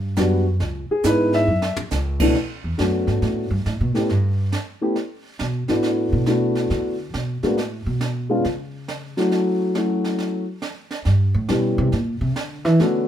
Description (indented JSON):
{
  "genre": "jazz piano trio",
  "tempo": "138 BPM",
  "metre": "4/4",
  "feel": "swing 66% on 8ths",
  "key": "B minor",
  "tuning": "A4 = 440 Hz",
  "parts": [
    { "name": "upright bass", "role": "bass", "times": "0.0-13.1 s", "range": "C#2 to E3", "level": "-22 LUFS", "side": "right 1 dB", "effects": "none" },
    { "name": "dark upright piano", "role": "melody", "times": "0.2-13.1 s", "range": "B2 to E5", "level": "-20 LUFS", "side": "left 1 dB", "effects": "none" },
    { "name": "jazz brush drum kit", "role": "drums", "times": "0.2-13.1 s", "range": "brushed snare drum, crash cymbal, hi-hat, kick drum, snare drum, toms", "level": "-30 LUFS", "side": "right 4 dB", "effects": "none" }
  ],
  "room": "light reverb",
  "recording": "minimal, uncompressed stereo recording",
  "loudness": "-19 LUFS",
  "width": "side -10 dB against mid",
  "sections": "0.0-2.3 A section; 2.3-13.1 A section",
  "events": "upright piano solo 0.0-2.3; drum fill 1.5-1.9; upright bass solo 2.3-13.1",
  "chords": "0.0 Em9 (rootless); 0.6 C#m7; 1.5 F#5; 2.3 Bm7; 4.1 A7sus2; 5.8 D6; 7.6 N.C.; 8.4 C#sus4; 9.3 F#m7; 11.1 C#m7b5; 11.9 A#add9"
}